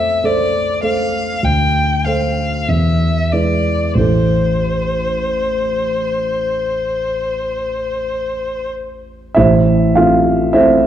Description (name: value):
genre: classical, romantic duo for violin and grand piano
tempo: 44-51 BPM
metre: 4/4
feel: rubato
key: A minor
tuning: A4 = 440 Hz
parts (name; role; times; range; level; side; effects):
- rich violin; melody; 0.0-8.7 s; C5 to G5; -18 LUFS; left 2 dB; none
- dark concert grand piano; accompaniment; 0.0-10.9 s; A1 to F5; -15 LUFS; right 1 dB; none
room: moderate recital hall reverb, RT60 1.8 s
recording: dark, warm production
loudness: -14 LUFS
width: side -10 dB against mid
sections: 0.0-9.4 A section; 9.4-10.9 A section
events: none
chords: 0.0 F; 1.4 Dm7; 2.7 E; 4.0 Am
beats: 0.25 1.45 2.69 | 4.02 5.38 6.74 8.07 | 9.37 10.55